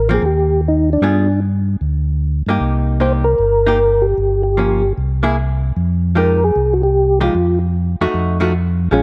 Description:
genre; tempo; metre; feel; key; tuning
jazz; 152 BPM; 4/4; swing 66% on 8ths; F minor; A4 = 440 Hz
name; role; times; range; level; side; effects
percussive tonewheel organ; melody; 0.0-9.0 s; Db4 to C5; -18 LUFS; equal; slow rotary speaker, chorus vibrato
mellow tonewheel organ; bass; 0.0-9.0 s; G1 to G2; -19 LUFS; equal; chorus vibrato, slow rotary speaker
vintage hollow-body jazz guitar; accompaniment; 0.1-9.0 s; F3 to Ab4; -22 LUFS; equal; none
room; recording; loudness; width
light reverb; dark, warm production; -16 LUFS; mono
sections
0.0-8.9 A section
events
none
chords
0.0 N.C.; 1.0 G7b9; 2.6 Cm7; 4.2 Gm7b5; 5.0 C7b13; 5.8 Fm9; 8.1 F7b9

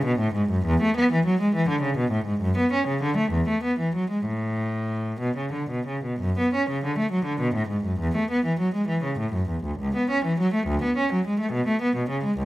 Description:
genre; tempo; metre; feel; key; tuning
classical, baroque-style suite movement for unaccompanied cello; 57-71 BPM (dotted quarters); 6/8; rubato; A major; A4 = 440 Hz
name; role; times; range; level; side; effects
rich cello; solo; 0.0-12.4 s; C#2 to C#4; -22 LUFS; equal; none
room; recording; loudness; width
light reverb; close, detailed microphones; -22 LUFS; side -16 dB against mid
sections
0.0-6.2 A section; 6.2-12.4 A section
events
none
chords
none

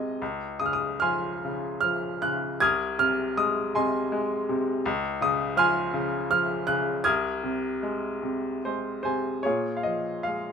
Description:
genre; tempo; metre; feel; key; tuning
classical, lyrical solo piano; 48-56 BPM (dotted quarters); 6/8; rubato; unclear; A4 = 439 Hz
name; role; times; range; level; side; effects
bright upright piano; solo; 0.0-10.5 s; C2 to Ab6; -24 LUFS; equal; none
room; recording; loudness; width
moderate studio reverb, RT60 0.6 s; minimal, uncompressed stereo recording; -24 LUFS; side -6 dB against mid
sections
0.0-9.4 A section; 9.4-10.5 B section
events
upright piano fill 0.0, 8.2-9.4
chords
0.2 Dbmaj7; 2.6 Fm7/C; 4.9 Dbmaj7; 7.0 Fm7/C; 9.4 Bbm7

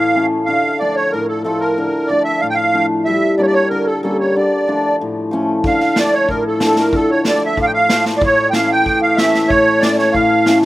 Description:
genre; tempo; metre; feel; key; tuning
klezmer; 93 BPM; 2/4; straight; D harmonic minor; A4 = 439 Hz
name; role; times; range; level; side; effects
musette accordion; melody; 0.0-10.6 s; A4 to G5; -15 LUFS; right 2 dB; slapback echo
hammered dulcimer; accompaniment; 0.0-10.7 s; A2 to F4; -16 LUFS; left 1 dB; none
street-band drum kit; drums; 5.6-10.7 s; kick drum, snare drum; -21 LUFS; equal; none
room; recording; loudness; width
little or no reverb; recorded outdoors, with no room sound; -13 LUFS; side -16 dB against mid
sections
0.0-5.6 A section; 5.6-10.7 A section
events
none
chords
0.5 Dm; 3.1 Gm; 4.3 Dm; 8.2 A

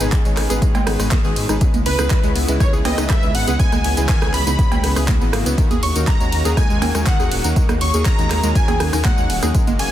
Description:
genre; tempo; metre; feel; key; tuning
progressive house; 121 BPM; 4/4; straight; unclear; A4 = 440 Hz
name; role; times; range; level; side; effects
plucky unison lead; melody; 0.0-9.9 s; B4 to C#6; -24 LUFS; equal; wide subtle chorus, dub echo
supersaw pad; sustained chords; 0.0-9.9 s; B2 to G#4; -29 LUFS; equal; phaser, sidechain pumping
glassy wavetable pluck; arpeggios; 0.0-9.9 s; G#2 to G#4; -26 LUFS; left 1 dB; chorus, sidechain pumping, dub echo
deep mellow chord stab; stabs; 0.0-9.9 s; G#3 to C#5; -26 LUFS; right 1 dB; chorus, cassette tape, sidechain pumping, dub echo
dark detuned saw bass; bass; 0.0-9.9 s; D#1 to G#2; -21 LUFS; equal; sidechain pumping
deep house drum kit; drums; 0.0-9.9 s; handclaps, hi-hat, ride cymbal, rim click, tambourine; -26 LUFS; equal; studio ambience, soft clipping on snare
electronic kick drum; drums; 0.1-9.6 s; none; -17 LUFS; equal; studio ambience
electronic rim click, cowbell and congas; percussion; 0.4-9.8 s; none; -26 LUFS; right 4 dB; sidechain pumping on perc, studio ambience, soft clipping on snare, sidechain pumping on snare
room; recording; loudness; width
digital ambience; dense, heavily limited modern master; -15 LUFS; side -12 dB against mid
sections
0.0-9.9 A section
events
none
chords
0.0 G#m; 1.6 C#m7; 5.6 D#m7

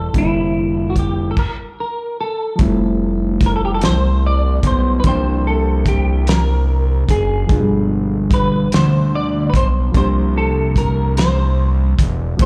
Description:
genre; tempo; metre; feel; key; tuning
slow six-eight R&B; 49 BPM (dotted quarters); 6/8; straight; unclear; A4 = 444 Hz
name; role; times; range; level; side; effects
semi-hollow electric guitar; melody; 0.0-12.5 s; E4 to D5; -24 LUFS; equal; ensemble chorus, slapback echo
bright reed electric piano; accompaniment; 0.0-12.5 s; B2 to G5; -24 LUFS; equal; slapback echo
fat analog bass; bass; 0.0-12.5 s; E1 to D2; -19 LUFS; equal; none
cloth-damped thuddy drum kit; drums; 0.1-12.5 s; crash cymbal, hi-hat, kick drum, snare drum; -19 LUFS; equal; none
room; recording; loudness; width
studio reverb; live gig heard through the venue's PA, club reverb; -17 LUFS; mono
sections
0.0-2.6 A section; 2.6-12.5 B section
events
stop 1.4-2.6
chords
0.1 C9/F; 2.6 Fmaj7; 5.0 C9sus4; 7.5 G7b9; 9.9 C9sus4

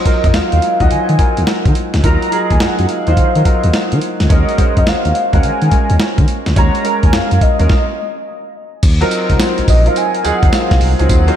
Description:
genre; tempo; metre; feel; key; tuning
R&B, new jack swing; 106 BPM; 4/4; swing 65% on 16ths; Eb dorian; A4 = 439 Hz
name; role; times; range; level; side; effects
warm velvety synth lead; melody; 0.0-11.0 s; Eb5 to Bb5; -19 LUFS; right 1 dB; chorus, analog delay
warm concert grand piano; accompaniment; 0.0-11.4 s; Gb3 to Eb5; -18 LUFS; equal; analog chorus
dusty soul sampler-style drum kit; drums; 0.1-11.4 s; crash cymbal, hi-hat, kick drum, snare drum, tambourine; -14 LUFS; equal; none
smooth gliding synth bass; bass; 0.2-11.3 s; Bb1 to Eb3; -14 LUFS; equal; none
room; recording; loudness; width
moderate lush hall reverb, RT60 2.1 s; dreamy mix soaked in reverb; -11 LUFS; side -10 dB against mid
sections
0.0-8.8 A section; 8.8-11.4 B section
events
stop 7.7-8.8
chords
0.0 Ebm69; 4.3 Ab9sus4; 8.8 Ebm69

